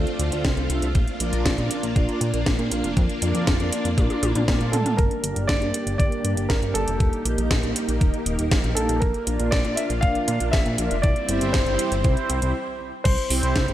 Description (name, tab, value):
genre	italo disco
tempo	119 BPM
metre	4/4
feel	straight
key	unclear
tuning	A4 = 440 Hz
part	string machine, full ensemble	sustained chords	0.0-13.7 s	G3 to G4	-29 LUFS	equal	ensemble chorus
part	mellow synth brass	stabs	0.0-13.7 s	C4 to F5	-30 LUFS	right 2 dB	chorus, digital delay
part	chorused synth bass	bass	0.0-13.7 s	Eb1 to Bb2	-26 LUFS	equal	none
part	house drum kit	drums	0.1-13.7 s	crash cymbal, hi-hat, snare drum, toms	-28 LUFS	equal	high-pass filter on hats, studio ambience, high-pass filter on snare, high-pass filter on toms, high-pass filter on cymbals, gated reverb
part	electronic kick drum	drums	0.4-13.7 s	none	-22 LUFS	equal	studio ambience
part	dark concert grand piano	melody	4.7-13.7 s	A4 to F5	-28 LUFS	equal	digital delay
room	light reverb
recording	none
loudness	-20 LUFS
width	side -13 dB against mid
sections	0.0-5.0 A section; 5.0-13.1 B section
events	filter sweep on analog polysynth 0.0-5.0, 5.0-13.1; drum fill 4.0-5.0; filter sweep on string machine 5.0-13.1; stop 12.5-13.1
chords	0.0 Dm; 1.0 Bb; 5.0 Gm; 7.0 Eb; 9.0 Bb; 11.0 C